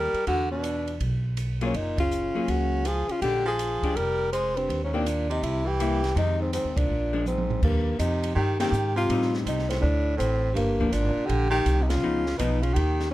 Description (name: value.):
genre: jazz, small-group swing and bop.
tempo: 163 BPM.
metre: 4/4.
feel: swing 65% on 8ths.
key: Eb major.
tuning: A4 = 438 Hz.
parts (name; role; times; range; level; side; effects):
mellow tenor saxophone; melody; 0.0-13.1 s; Bb3 to C5; -27 LUFS; left 2 dB; none.
bright baritone saxophone; second line; 0.0-13.1 s; G2 to Ab3; -31 LUFS; right 4 dB; none.
upright bass; bass; 0.0-13.1 s; F1 to A2; -27 LUFS; equal; none.
open jazz drum kit; drums; 0.1-13.1 s; crash cymbal, hi-hat, kick drum, ride cymbal, snare drum, toms; -34 LUFS; right 1 dB; none.
archtop guitar, miked and amplified; accompaniment; 1.6-12.6 s; Eb3 to G#4; -30 LUFS; left 4 dB; none.
room: light reverb.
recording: dark, warm production.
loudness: -23 LUFS.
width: side -16 dB against mid.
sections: 0.0-7.6 A section; 7.6-13.1 B section.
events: band accent 1.9, 6.7, 8.5, 11.8; drum fill 7.3-7.6.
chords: 0.3 E7(no3); 1.7 Gbmaj9; 3.2 Bb6; 4.7 Eb6; 5.4 C7; 6.2 Fm7; 6.9 Bb7; 7.6 Eb6; 9.1 Am7b5; 9.8 D5; 10.6 Gm; 12.0 Db9.